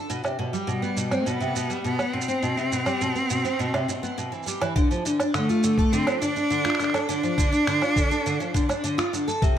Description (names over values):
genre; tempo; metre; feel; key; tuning
folktronica; 103 BPM; 4/4; straight; D dorian; A4 = 440 Hz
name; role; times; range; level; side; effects
picked steel-string acoustic guitar; arpeggios; 0.0-9.6 s; B2 to A4; -26 LUFS; equal; analog chorus, tape echo
electronic shaker, woodblock and finger snaps; drums; 0.1-9.5 s; none; -31 LUFS; right 2 dB; none
clear cello; melody; 0.7-9.1 s; G3 to D4; -25 LUFS; equal; tape echo
electronic kick drum; drums; 4.8-9.5 s; none; -23 LUFS; equal; none
room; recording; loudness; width
wet plate reverb, RT60 1.3 s, studio ambience; dreamy mix soaked in reverb; -22 LUFS; side -10 dB against mid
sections
0.0-4.8 A section; 4.8-9.6 B section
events
none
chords
0.1 Cmaj7(no3); 4.8 Dm